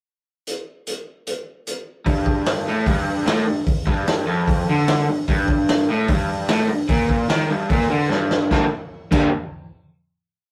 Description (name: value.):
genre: garage rock duo or trio.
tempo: 149 BPM.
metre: 4/4.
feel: straight.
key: G minor.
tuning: A4 = 440 Hz.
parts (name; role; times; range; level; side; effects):
raw garage drum kit; drums; 0.5-9.2 s; crash cymbal, hi-hat, kick drum, snare drum; -24 LUFS; equal; none.
crunchy overdriven guitar; riff; 2.1-9.3 s; F2 to G4; -22 LUFS; equal; none.
room: moderate studio reverb, RT60 0.6 s.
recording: rough rehearsal-room recording.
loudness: -20 LUFS.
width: mono.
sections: 0.5-2.1 pickup bar; 2.1-8.5 pre-chorus; 8.5-10.1 final chord.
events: drum fill 8.1-8.5.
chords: 0.5 N.C.; 8.5 Gm.